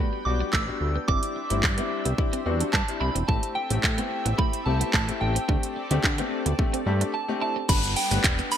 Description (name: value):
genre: dance-pop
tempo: 109 BPM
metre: 4/4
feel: straight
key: G major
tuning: A4 = 439 Hz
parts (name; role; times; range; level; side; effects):
- soft synth bell; melody; 0.0-8.6 s; G5 to E6; -31 LUFS; right 2 dB; chorus, ping-pong delay
- clear concert grand piano; accompaniment; 0.0-8.6 s; G3 to B4; -31 LUFS; left 6 dB; lush chorus, sidechain pumping
- lush unison pad; sustained chords; 0.0-8.6 s; G3 to G5; -36 LUFS; equal; chorus, sidechain pumping
- clean electric guitar; riff; 0.0-8.5 s; A3 to E4; -36 LUFS; right 7 dB; ensemble chorus
- fat analog bass; bass; 0.3-8.4 s; E1 to D3; -26 LUFS; equal; sidechain pumping
- house drum kit; drums; 0.5-8.6 s; crash cymbal, handclaps, hi-hat, kick drum, shaker; -25 LUFS; equal; gated reverb
- downlifter; sound effects; 7.7-8.6 s; none; -30 LUFS; equal; none
room: light reverb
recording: bright 1980s-style digital production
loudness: -22 LUFS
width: side -9 dB against mid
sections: 0.0-7.7 A section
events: break 7.1-7.7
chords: 0.0 Gmaj7; 1.1 Cadd9/G; 3.3 Am7; 5.5 D7sus4; 7.7 Gmaj7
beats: 0.54 | 1.08 1.64 2.19 2.74 | 3.29 3.84 4.39 4.94 | 5.49 6.04 6.59 7.14 | 7.69 8.24